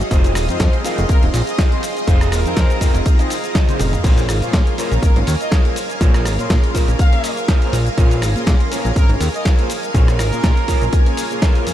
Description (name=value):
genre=nu-disco, nu disco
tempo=122 BPM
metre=4/4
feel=swing 55% on 16ths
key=Bb minor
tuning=A4 = 440 Hz
part: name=string machine, full ensemble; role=sustained chords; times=0.0-11.7 s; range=Ab4 to C6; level=-26 LUFS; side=right 1 dB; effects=ensemble chorus, sidechain pumping
part: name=fat analog bass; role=bass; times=0.0-11.7 s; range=Eb1 to Bb2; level=-19 LUFS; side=equal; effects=sidechain pumping
part: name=dusty soul sampler-style drum kit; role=drums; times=0.0-11.7 s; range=crash cymbal, hi-hat, rim click, shaker, snare drum, toms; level=-24 LUFS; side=equal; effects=none
part: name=mellow synth brass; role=accompaniment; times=0.1-11.7 s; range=Bb3 to C6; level=-25 LUFS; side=left 1 dB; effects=chorus, diffuse ambient delay
part: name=electric guitar at the edge of break-up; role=riff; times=0.1-11.7 s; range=F4 to F5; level=-27 LUFS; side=right 2 dB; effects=analog chorus, vintage 12-bit sampler grit, diffuse ambient delay
part: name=electronic kick drum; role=drums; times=0.1-11.5 s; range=none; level=-14 LUFS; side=equal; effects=none
part: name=clear trumpet section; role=melody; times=1.1-10.9 s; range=Bb4 to F5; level=-29 LUFS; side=right 1 dB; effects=diffuse ambient delay
room=light reverb, digital ambience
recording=none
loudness=-14 LUFS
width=side -12 dB against mid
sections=0.0-11.7 A section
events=drum fill 3.6-4.0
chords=0.1 Fm7; 4.0 Bbm7